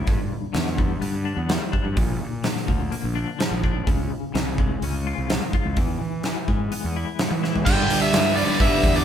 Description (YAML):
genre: quiet-loud alternative rock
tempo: 126 BPM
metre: 4/4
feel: straight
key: unclear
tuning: A4 = 439 Hz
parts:
  - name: clean electric guitar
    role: arpeggios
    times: 0.0-7.7 s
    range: G2 to E#4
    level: -29 LUFS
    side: left 7 dB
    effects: tremolo
  - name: fuzz fingered electric bass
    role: bass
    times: 0.1-9.0 s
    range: Bb1 to G3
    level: -27 LUFS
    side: right 1 dB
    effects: overdrive
  - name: huge arena drum kit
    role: drums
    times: 0.1-8.9 s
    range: crash cymbal, hi-hat, kick drum, snare drum, toms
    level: -24 LUFS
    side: equal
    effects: none
  - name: biting lead guitar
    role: melody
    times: 7.7-9.0 s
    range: D5 to G5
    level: -23 LUFS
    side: left 1 dB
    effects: overdrive
  - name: string machine, cellos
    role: sustained chords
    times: 7.7-9.0 s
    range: D4 to B4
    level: -33 LUFS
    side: left 1 dB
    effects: phaser, ensemble chorus
  - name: fuzz guitar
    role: riff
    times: 7.7-9.0 s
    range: G2 to G3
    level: -23 LUFS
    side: right 5 dB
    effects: distortion
  - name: tight distorted guitar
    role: riff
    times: 7.7-9.0 s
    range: G2 to G3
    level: -25 LUFS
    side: left 5 dB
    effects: distortion
room: light reverb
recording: band playing live in one room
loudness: -20 LUFS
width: side -9 dB against mid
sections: 0.0-7.7 A section; 7.7-9.0 B section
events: drum fill 7.4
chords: 0.1 G; 2.0 Bb; 3.9 C#; 5.8 E; 7.7 G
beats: | 0.07 0.55 1.02 1.50 | 1.97 2.45 2.92 3.40 | 3.87 4.35 4.82 5.29 | 5.77 6.24 6.71 7.19 | 7.66 8.13 8.60